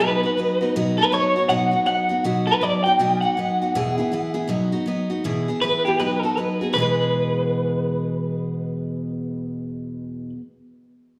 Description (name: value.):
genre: rock.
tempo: 160 BPM.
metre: 4/4.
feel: swing 61% on 8ths.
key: E major.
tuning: A4 = 438 Hz.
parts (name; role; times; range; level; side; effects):
electric guitar through a small old amp; melody; 0.0-10.3 s; G4 to G5; -23 LUFS; equal; tremolo, slapback echo, analog delay.
picked steel-string acoustic guitar; accompaniment; 0.0-10.4 s; E2 to G#4; -26 LUFS; equal; slapback echo.
room: light reverb, small room ambience.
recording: live gig heard through the venue's PA, club reverb.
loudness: -22 LUFS.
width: mono.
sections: 0.0-5.2 A section; 5.2-6.8 B section; 6.8-9.8 C section.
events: none.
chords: 0.0 B; 3.8 E; 4.5 B; 5.2 E; 6.0 B; 6.8 E.